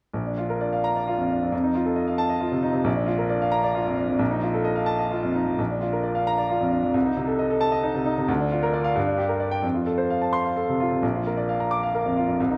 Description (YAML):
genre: classical, virtuoso piano study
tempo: 89 BPM (dotted quarters)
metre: 6/8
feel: rubato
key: Bb major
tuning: A4 = 440 Hz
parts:
  - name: clear grand piano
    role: solo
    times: 0.1-12.6 s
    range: Bb1 to D6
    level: -24 LUFS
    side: equal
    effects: none
room: wet scoring stage reverb, RT60 1.8 s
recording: dark, warm production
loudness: -24 LUFS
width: mono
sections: 0.1-5.6 A section; 5.6-12.6 B section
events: none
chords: 0.1 Bb; 1.5 F7; 2.9 Bb; 4.2 F7/Bb; 5.6 Bb; 6.9 Adim/C; 8.3 Bb/D; 9.0 Gm; 9.6 F; 11.0 Bb